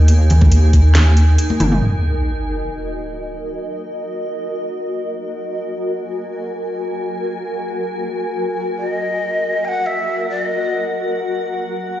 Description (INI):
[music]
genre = deep dubstep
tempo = free time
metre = none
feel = none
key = Eb minor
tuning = A4 = 438 Hz
[part]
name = granular cloud pad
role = sustained chords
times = 0.0-12.0 s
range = Eb4 to Ab5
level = -23 LUFS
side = equal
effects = built-in reverb
[part]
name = deep soft wobble bass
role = bass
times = 0.0-1.8 s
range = Gb1 to Eb2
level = -10 LUFS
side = equal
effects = chorus
[part]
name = garage drum kit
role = drums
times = 0.1-1.8 s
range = hi-hat, snare drum, toms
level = -23 LUFS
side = equal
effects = none
[part]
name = congas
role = percussion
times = 0.3-1.7 s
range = none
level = -22 LUFS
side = left 1 dB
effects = dub echo
[part]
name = electronic kick drum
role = drums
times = 0.4-0.8 s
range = none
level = -13 LUFS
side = equal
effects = none
[part]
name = sub drop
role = sound effects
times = 1.8-3.6 s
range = none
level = -22 LUFS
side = equal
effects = none
[part]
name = breathy shakuhachi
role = melody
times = 8.8-11.1 s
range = Eb5 to Ab5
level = -21 LUFS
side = left 1 dB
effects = dub echo
[sound]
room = moderate echo chamber reverb, RT60 1.9 s, digital ambience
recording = played on a big sound system in a bare room, stone room reverb, nothing above 7.6 kHz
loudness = -16 LUFS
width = side -13 dB against mid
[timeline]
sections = 0.0-1.8 A section; 1.8-12.0 B section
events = drum fill 1.6; impact 1.8-3.6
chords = 0.0 Eb5; 1.8 Ebm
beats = free time